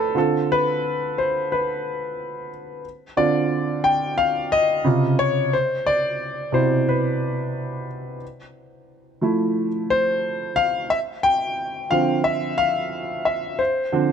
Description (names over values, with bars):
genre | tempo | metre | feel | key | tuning
soul | 89 BPM | 4/4 | straight | D dorian | A4 = 440 Hz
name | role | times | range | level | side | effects
warm concert grand piano | solo | 0.0-14.1 s | B2 to G5 | -20 LUFS | equal | none
room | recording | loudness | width
light reverb | none | -19 LUFS | side -7 dB against mid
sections
0.0-14.1 A section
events
grand piano solo 0.0-14.1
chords
0.2 Dm7; 4.9 C#maj9; 5.5 Cmaj9; 8.2 Fmaj7; 10.9 Dm7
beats
| 0.15 0.82 1.50 2.17 | 2.84 3.51 4.18 4.86 | 5.53 6.20 6.87 7.54 | 8.22 8.89 9.56 10.23 | 10.91 11.58 12.25 12.93 | 13.60